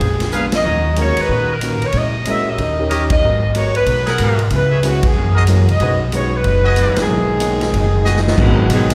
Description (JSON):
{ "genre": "jazz, big band swing", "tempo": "186 BPM", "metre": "4/4", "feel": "swing 63% on 8ths", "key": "B major", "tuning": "A4 = 440 Hz", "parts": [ { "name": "mellow saxophone section", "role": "melody", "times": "0.0-8.9 s", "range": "F#3 to E5", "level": "-22 LUFS", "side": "equal", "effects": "slapback echo" }, { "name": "hollow-body jazz guitar", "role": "accompaniment", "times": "0.0-8.9 s", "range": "F#2 to A#4", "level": "-27 LUFS", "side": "equal", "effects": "none" }, { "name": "upright bass", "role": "bass", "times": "0.0-8.9 s", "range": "F#1 to A#2", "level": "-20 LUFS", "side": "equal", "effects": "none" }, { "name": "swinging big-band drum kit", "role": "drums", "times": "0.0-8.9 s", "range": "crash cymbal, hi-hat, kick drum, ride cymbal, snare drum", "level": "-24 LUFS", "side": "equal", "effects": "none" }, { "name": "clear trumpet section", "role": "stabs", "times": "0.3-8.2 s", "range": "B3 to A#5", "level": "-24 LUFS", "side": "equal", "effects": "slapback echo" }, { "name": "warm upright piano", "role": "accompaniment", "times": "1.0-7.6 s", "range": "F#3 to C#5", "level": "-26 LUFS", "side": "equal", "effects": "slapback echo" }, { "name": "warm trombone section", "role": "second line", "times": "7.0-8.9 s", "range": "G#2 to D#4", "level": "-23 LUFS", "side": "equal", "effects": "none" } ], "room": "light reverb", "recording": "live gig heard through the venue's PA, recital hall reverb", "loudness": "-16 LUFS", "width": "mono", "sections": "0.0-8.4 A section", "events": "band accent 0.5, 3.1, 5.0, 6.9; drum fill 8.1-8.4", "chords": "0.0 A#7b9; 0.6 D#m7; 1.9 A#m7b5; 2.6 D#7; 3.2 G#m9; 4.5 C#m7; 5.2 F#7; 5.8 B6; 8.4 G#m7" }